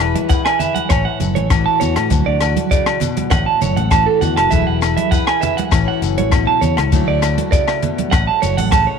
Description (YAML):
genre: highlife guitar band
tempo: 100 BPM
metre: 4/4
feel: straight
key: A major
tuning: A4 = 440 Hz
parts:
  - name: picked steel-string acoustic guitar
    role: accompaniment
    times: 0.0-9.0 s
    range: A2 to B4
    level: -22 LUFS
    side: left 14 dB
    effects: none
  - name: fingered electric bass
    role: bass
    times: 0.0-8.9 s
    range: E1 to A2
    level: -19 LUFS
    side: left 2 dB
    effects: none
  - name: compact cocktail drum kit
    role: drums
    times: 0.0-8.9 s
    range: hi-hat, kick drum, rim click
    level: -19 LUFS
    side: left 1 dB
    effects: none
  - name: agogo bells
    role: percussion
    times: 0.0-8.9 s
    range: none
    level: -25 LUFS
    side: left 13 dB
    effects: none
  - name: clean electric guitar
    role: arpeggios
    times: 0.2-9.0 s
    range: A4 to A5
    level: -18 LUFS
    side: right 10 dB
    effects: spring reverb, tape echo
  - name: congas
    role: percussion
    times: 0.2-8.7 s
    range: none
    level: -24 LUFS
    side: right 10 dB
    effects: none
  - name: shekere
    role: percussion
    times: 0.3-8.9 s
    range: none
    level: -26 LUFS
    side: left 8 dB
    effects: none
room: light reverb, small room ambience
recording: 1960s-style stereo with parts hard left and right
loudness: -13 LUFS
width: side -6 dB against mid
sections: 0.0-9.0 A section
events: none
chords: 0.0 Eadd9; 0.9 A6; 2.1 Dadd9; 3.3 A5; 4.5 Eadd9; 5.7 A6; 6.9 Dadd9; 8.1 A6